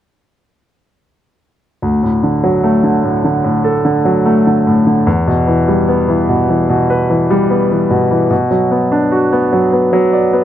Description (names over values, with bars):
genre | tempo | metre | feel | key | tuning
pop | 74 BPM | 4/4 | straight | D major | A4 = 442 Hz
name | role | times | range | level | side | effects
bright concert grand piano | accompaniment | 1.8-10.4 s | D2 to D5 | -11 LUFS | equal | none
room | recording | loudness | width
light reverb | dry, close 1970s-style studio recording | -11 LUFS | side -11 dB against mid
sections
1.8-10.4 A section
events
none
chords
1.8 D; 5.1 Em; 8.3 Bm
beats
| 1.82 2.64 3.45 4.26 | 5.07 5.88 6.69 7.50 | 8.31 9.12 9.93